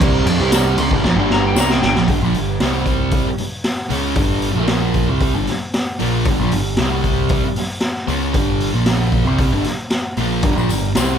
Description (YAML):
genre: garage rock duo or trio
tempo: 115 BPM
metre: 4/4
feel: straight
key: G minor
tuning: A4 = 441 Hz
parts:
  - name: overdriven combo organ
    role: sustained chords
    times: 0.0-2.0, 10.4-11.2 s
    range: C4 to C5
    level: -27 LUFS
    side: equal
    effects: spring reverb
  - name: thick fuzz guitar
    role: riff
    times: 0.0-11.2 s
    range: G2 to C#4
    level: -18 LUFS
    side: right 2 dB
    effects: distortion
  - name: growling picked electric bass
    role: bass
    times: 0.0-11.2 s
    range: G1 to F2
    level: -22 LUFS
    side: equal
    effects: overdrive
  - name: raw garage drum kit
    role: drums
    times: 0.0-11.1 s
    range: hi-hat, kick drum, ride cymbal, snare drum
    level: -19 LUFS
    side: equal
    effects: none
  - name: tambourine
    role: percussion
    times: 0.5-1.7, 10.6-11.1 s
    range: none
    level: -28 LUFS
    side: left 9 dB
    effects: none
  - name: clean lap steel guitar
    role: melody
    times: 0.8-2.1 s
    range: G5 to C6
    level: -22 LUFS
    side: left 2 dB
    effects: digital delay
room: light reverb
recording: none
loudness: -15 LUFS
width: side -8 dB against mid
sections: 0.0-2.1 A section; 2.1-11.2 B section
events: electric slide guitar solo 0.0-2.1; drum fill 1.0-2.1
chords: 0.0 Gm; 2.6 C5; 3.3 G5; 4.6 Bb5; 5.1 Gm; 6.8 C5; 7.4 G5; 8.7 Bb5; 9.3 Gm